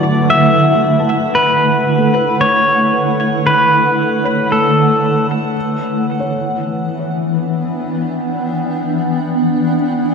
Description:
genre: ambient.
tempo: 57 BPM.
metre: 4/4.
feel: straight.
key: D major.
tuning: A4 = 439 Hz.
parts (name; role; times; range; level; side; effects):
pedal steel guitar; melody; 0.0-5.3 s; A4 to E5; -14 LUFS; left 1 dB; shimmer reverb, tape echo.
granular cloud pad; sustained chords; 0.0-10.1 s; D3 to G5; -15 LUFS; right 1 dB; built-in reverb.
felt-muted upright piano; arpeggios; 0.0-10.1 s; F#3 to C#6; -25 LUFS; left 2 dB; shimmer reverb, tape echo.
room: wet spring reverb, RT60 2.1 s.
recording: echo-heavy mix.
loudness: -12 LUFS.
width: side -5 dB against mid.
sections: 0.0-10.1 A section.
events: none.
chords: 0.0 D69; 5.6 Em9.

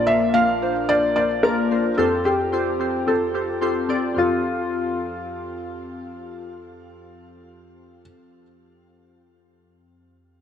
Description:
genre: pop.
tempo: 110 BPM.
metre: 4/4.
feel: straight.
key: F major.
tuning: A4 = 440 Hz.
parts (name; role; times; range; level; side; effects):
felt-muted upright piano; melody; 0.0-8.0 s; F4 to F5; -22 LUFS; equal; shimmer reverb, digital delay.
glassy digital keys; accompaniment; 0.0-10.4 s; Bb1 to F5; -23 LUFS; left 2 dB; chorus, shimmer reverb.
room: wet plate reverb, RT60 2.6 s.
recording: dark, warm production.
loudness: -19 LUFS.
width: side -8 dB against mid.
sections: 0.0-4.2 A section; 4.2-8.5 B section.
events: none.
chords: 0.0 Bb; 2.0 Fadd9.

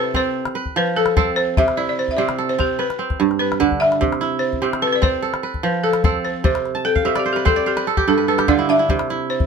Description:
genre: west african traditional, West African string and xylophone music.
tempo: 98 BPM (dotted quarters).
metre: 12/8.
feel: straight.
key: C major.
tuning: A4 = 440 Hz.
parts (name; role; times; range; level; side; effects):
balafon; melody; 0.0-9.5 s; G4 to E5; -21 LUFS; left 3 dB; none.
kora; arpeggios; 0.0-9.5 s; G2 to A5; -19 LUFS; right 6 dB; none.
calabash; percussion; 0.0-9.5 s; none; -22 LUFS; left 3 dB; none.
room: moderate studio reverb, RT60 0.6 s.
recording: band playing live in one room.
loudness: -16 LUFS.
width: side -6 dB against mid.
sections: 0.0-9.5 A section.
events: drum fill 3.6-4.0; kora fill 6.8-8.9.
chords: 0.3 F; 1.6 C; 2.8 G; 4.0 C; 5.2 F; 6.4 Cmaj13; 7.7 G5; 8.9 C.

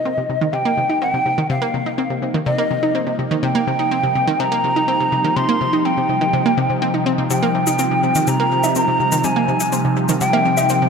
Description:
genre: ambient, sequencer-driven space music.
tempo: 124 BPM.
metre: 4/4.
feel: straight.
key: C minor.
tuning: A4 = 440 Hz.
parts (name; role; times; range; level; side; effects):
mellow hollow jazz flute; melody; 0.0-10.9 s; Eb5 to C6; -19 LUFS; equal; tape echo.
phased analog pad; sustained chords; 0.0-10.9 s; C3 to Bb4; -22 LUFS; equal; phaser, chorus.
analog pluck; riff; 0.0-10.9 s; C3 to Eb4; -21 LUFS; right 1 dB; chorus, tape echo.
wind-like tuned noise texture; texture; 0.9-10.9 s; G3; -31 LUFS; equal; built-in reverb.
shaker and woodblock; percussion; 7.3-10.8 s; none; -25 LUFS; left 5 dB; none.
room: wet plate reverb, RT60 3.7 s.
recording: none.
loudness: -16 LUFS.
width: side -5 dB against mid.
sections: 0.0-10.9 A section.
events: fade-in on analog synth pad 0.0-10.9; fade-in on synth texture 0.0-10.9.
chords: 0.0 Cm.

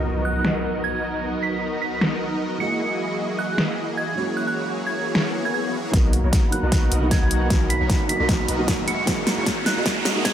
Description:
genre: future bass.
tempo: 153 BPM.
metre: 4/4.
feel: swing 54% on 16ths, half-time.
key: B major.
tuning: A4 = 440 Hz.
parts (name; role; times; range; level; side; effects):
felt-muted upright piano; accompaniment; 0.0-10.3 s; D#3 to D#5; -29 LUFS; right 2 dB; sidechain pumping.
airy breathy pad; sustained chords; 0.0-10.3 s; E3 to B5; -32 LUFS; right 1 dB; chorus, sidechain pumping.
supersaw chords; riff; 0.0-10.3 s; G#3 to F#5; -27 LUFS; equal; ensemble chorus, sidechain pumping, low-pass filter.
impact, swell and riser; sound effects; 0.0-1.2, 5.3-10.3 s; none; -30 LUFS; equal; none.
glassy synth bell; melody; 0.2-10.3 s; F#6 to C#7; -28 LUFS; right 3 dB; chorus, sidechain pumping, low-pass filter.
big-room dance drum kit; drums; 0.4-10.3 s; finger snaps, hi-hat, snare drum; -24 LUFS; equal; low-pass filter on snare, low-pass filter on cymbals, low-pass filter on hats.
long sustained 808-style bass; bass; 5.9-10.3 s; E1 to B1; -25 LUFS; equal; tube saturation, sidechain pumping.
electronic kick drum; drums; 5.9-10.3 s; none; -22 LUFS; equal; none.
room: light reverb, digital ambience.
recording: high-pass filter.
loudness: -20 LUFS.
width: side -10 dB against mid.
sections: 0.0-5.9 A section; 5.9-10.3 B section.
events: impact 0.0-1.2; filter sweep on supersaw synth 0.0-5.9, 5.9-10.3; filter sweep on analog synth pad 0.0-5.9; swell 5.3-5.9; build-up 5.9-10.3; drum fill 5.9-10.3; filter sweep on synth bell 5.9-10.3; filter sweep 5.9-10.3; riser 7.0-10.3.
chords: 0.0 Bmaj7; 2.6 Emaj9#11; 4.2 F#9; 5.9 Bmaj7; 8.9 Emaj9#11.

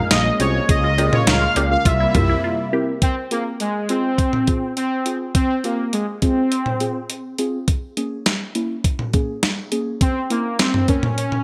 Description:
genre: synth-pop.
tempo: 103 BPM.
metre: 4/4.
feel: straight.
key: F harmonic minor from 3.0 s.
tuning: A4 = 441 Hz.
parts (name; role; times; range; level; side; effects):
analog synth brass; melody; 0.0-11.4 s; Ab3 to F5; -23 LUFS; equal; chorus, delay.
brassy analog pad; sustained chords; 0.0-3.0 s; C3 to F4; -28 LUFS; equal; chorus.
resonant blip pluck; arpeggios; 0.0-3.0 s; Eb4 to Ab4; -31 LUFS; equal; phaser, delay.
smooth gliding synth bass; bass; 0.0-2.4 s; Bb1 to Db2; -24 LUFS; equal; none.
clean 12-bit digital drum machine; drums; 0.1-11.4 s; cowbell, hi-hat, kick drum, snare drum, toms; -22 LUFS; equal; none.
muted felt-like synth keys; accompaniment; 0.4-11.1 s; Bb3 to C5; -28 LUFS; equal; chorus.
room: moderate plate reverb, RT60 1.5 s, digital ambience.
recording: bright 1980s-style digital production.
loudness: -20 LUFS.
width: mono.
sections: 0.0-3.0 A section; 3.0-11.4 B section.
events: break 2.4-3.0.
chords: 0.0 Bbm7; 0.7 Db6; 1.9 C7; 3.0 Fm; 7.7 Bbm7.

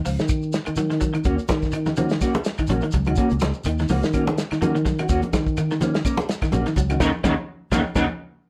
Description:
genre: afrobeat.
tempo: 125 BPM.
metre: 4/4.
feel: swing 56% on 16ths.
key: Eb minor.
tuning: A4 = 440 Hz.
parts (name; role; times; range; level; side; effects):
electric guitar at the edge of break-up; arpeggios; 0.0-8.0 s; Db3 to Gb3; -28 LUFS; equal; analog chorus.
fingered electric bass; bass; 0.1-8.1 s; Bb1 to Eb3; -26 LUFS; equal; none.
warm soul drum kit; drums; 0.1-8.1 s; hi-hat, kick drum, snare drum; -28 LUFS; equal; none.
shekere; percussion; 0.1-8.1 s; none; -37 LUFS; equal; none.
claves; percussion; 0.3-8.1 s; none; -41 LUFS; equal; none.
mellow electric guitar; stabs; 1.3-8.0 s; Bb3 to Gb4; -28 LUFS; equal; lush chorus.
congas; percussion; 1.5-8.1 s; none; -30 LUFS; equal; none.
room: light reverb.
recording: none.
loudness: -22 LUFS.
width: mono.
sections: 0.0-8.5 A section.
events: band accent 7.0-8.5.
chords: 0.0 Ebm7.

